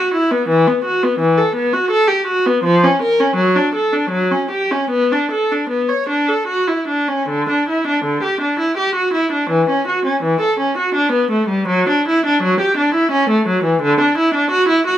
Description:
classical, baroque-style suite movement for unaccompanied viola; 73-87 BPM; 3/4; rubato; B minor, D major from 7.3 s; A4 = 437 Hz
rich viola; solo; 0.0-15.0 s; D3 to C#5; -14 LUFS; equal
light reverb; -14 LUFS; side -11 dB against mid
0.0-7.3 A section; 7.3-15.0 A section
| 0.48 1.19 1.90 | 2.64 3.37 4.12 | 4.91 5.70 6.48 | 7.29 8.05 8.78 | 9.49 10.22 10.94 | 11.69 12.43 13.12 | 13.82 14.51

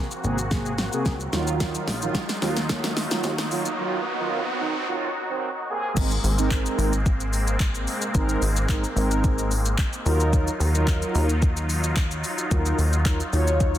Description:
dance-pop; 110 BPM; 4/4; straight; A4 = 440 Hz
mellow synth brass; accompaniment; 0.0-13.8 s; C3 to Db5; -28 LUFS; right 2 dB; chorus, sidechain pumping
filtered supersaw swell; sustained chords; 0.0-13.8 s; Gb3 to Ab4; -30 LUFS; equal; sidechain pumping
riser; sound effects; 0.1-4.9 s; -33 LUFS; right 2 dB
smooth R&B drum kit; drums; 0.1-13.8 s; crash cymbal, handclaps, hi-hat, kick drum, shaker, snare drum; -25 LUFS; equal
plucky analog bass; bass; 0.2-13.8 s; Ab1 to Eb2; -25 LUFS; equal; sidechain pumping
light reverb; dense, heavily limited modern master, high-pass filter; -21 LUFS; side -12 dB against mid
0.0-6.0 A section; 6.0-13.8 B section
build-up 0.0-6.0; drum fill 0.0-3.8; riser 0.1-6.0; drop 6.0-13.8
0.0 Abadd9; 1.3 Ebmadd9; 5.7 Abadd9; 10.1 Ebmadd9
0.51 1.06 | 1.60 2.15 2.69 3.24 | 3.79 4.33 4.88 5.42 | 5.97 6.51 7.06 7.60 | 8.15 8.69 9.24 9.79 | 10.33 10.88 11.42 11.97 | 12.51 13.06 13.60

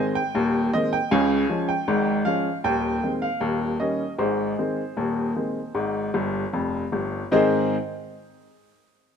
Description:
ragtime piano; 78 BPM; 2/4; straight; Ab major; A4 = 440 Hz
clear upright piano; solo; 0.0-7.7 s; Eb1 to Ab5; -22 LUFS; equal
moderate echo chamber reverb, RT60 1.7 s; dark, warm production; -21 LUFS; side -7 dB against mid
0.0-7.3 A section; 7.3-8.8 B section
upright piano fill 6.1-7.3
0.0 Ab; 1.1 Db; 2.6 Ab/Eb; 3.4 Eb7; 4.2 Ab
0.34 | 1.11 1.88 | 2.64 3.42 | 4.19 4.97 | 5.75 6.53 | 7.31

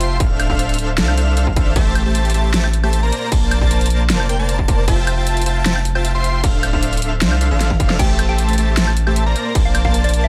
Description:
future bass; 154 BPM; 4/4; half-time; A4 = 440 Hz
airy dreamy lead; arpeggios; 0.0-10.3 s; F5 to C6; -29 LUFS; equal; chorus, phaser, vintage 12-bit sampler grit, sidechain pumping, tape echo
dense compressed supersaw; riff; 0.0-10.3 s; A3 to C6; -24 LUFS; equal; cassette tape, sidechain pumping, tape echo
saturated sub bass; bass; 0.0-10.3 s; D1 to C2; -20 LUFS; equal; sidechain pumping
dubstep drum kit; drums; 0.0-10.2 s; crash cymbal, hi-hat, snare drum, toms, woodblock; -25 LUFS; equal; studio reverb
electronic kick drum; drums; 0.2-9.9 s; -20 LUFS; equal; distortion, studio reverb
mallet-like synth pluck; melody; 8.0-10.3 s; D5 to G5; -28 LUFS; equal; chorus, sidechain pumping, digital delay
little or no reverb; -17 LUFS; mono
0.0-10.3 A section
drum fill 7.6-8.0
0.2 Dm9; 1.8 Am7; 3.1 Bbmaj9; 4.9 Fmaj7; 6.4 Dm9; 8.0 Am7; 9.4 Bbmaj9
| 0.20 0.59 0.98 1.37 | 1.76 2.15 2.54 2.93 | 3.32 3.71 4.10 4.49 | 4.88 5.27 5.66 6.04 | 6.43 6.82 7.21 7.60 | 7.99 8.38 8.77 9.16 | 9.55 9.94

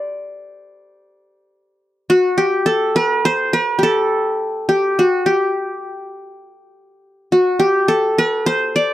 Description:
turkish; 207 BPM (eighths); 9/8; straight; A4 = 438 Hz
qanun; solo; 0.0-8.9 s; F#4 to D5; -15 LUFS; equal
little or no reverb; dry, close 1970s-style studio recording; -14 LUFS; side -13 dB against mid
0.0-2.1 A section; 2.1-8.9 B section
0.07 0.36 0.65 0.94 1.23 1.52 1.81 | 2.10 2.39 2.68 2.97 3.26 3.54 3.83 4.12 4.41 | 4.70 4.99 5.28 5.57 5.86 6.15 6.44 6.73 7.02 | 7.31 7.60 7.88 8.18 8.46 8.75

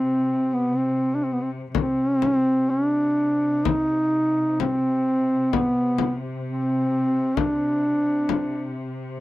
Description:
caucasian folk, Caucasian lament; 64 BPM; 4/4; rubato; C harmonic minor; A4 = 440 Hz
dark duduk; melody; 0.0-8.8 s; B3 to Eb4; -21 LUFS; equal
rich studio cello section; drone; 0.0-9.2 s; C3; -31 LUFS; left 1 dB
frame drum; percussion; 1.7-8.5 s; -25 LUFS; left 8 dB
light reverb; dry, close 1970s-style studio recording; -20 LUFS; side -16 dB against mid
0.0-9.2 A section
0.78 | 1.74 2.70 3.65 4.60 | 5.53 6.45 7.37 8.29

